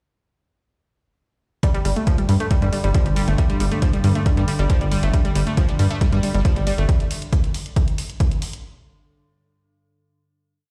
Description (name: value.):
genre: driving peak-time techno.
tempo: 137 BPM.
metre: 4/4.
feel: straight.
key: unclear.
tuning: A4 = 440 Hz.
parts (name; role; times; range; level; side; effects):
analog pluck; riff; 1.6-6.8 s; F3 to A3; -27 LUFS; equal; chorus, sidechain pumping, digital delay.
metallic inharmonic drone; drone; 2.0-6.9 s; G2 to D3; -30 LUFS; equal; chorus, built-in reverb, sidechain pumping.
electronic hi-hat; drums; 1.6-8.6 s; none; -37 LUFS; equal; none.
electronic kick drum; drums; 1.6-8.3 s; none; -22 LUFS; equal; none.
tight sequencer bass; bass; 1.9-6.9 s; G1 to G2; -22 LUFS; equal; sidechain pumping.
room: light reverb.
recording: played on a big sound system in a bare room, stone room reverb.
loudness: -20 LUFS.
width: mono.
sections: 1.6-8.6 drop.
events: drop 1.6-8.6.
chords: 1.6 G5.